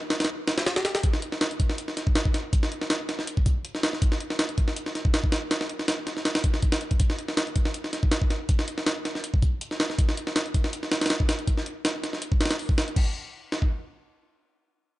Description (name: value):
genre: drum and bass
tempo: 161 BPM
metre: 4/4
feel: swing 53% on 16ths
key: none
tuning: none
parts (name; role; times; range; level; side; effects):
- jungle sampler-style drum kit; drums; 0.1-13.7 s; crash cymbal, hi-hat, kick drum, snare drum; -24 LUFS; equal; none
room: little or no reverb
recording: nothing above 10.4 kHz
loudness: -24 LUFS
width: side -17 dB against mid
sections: 0.0-13.0 A section; 13.0-15.0 B section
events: drop 0.0-13.0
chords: none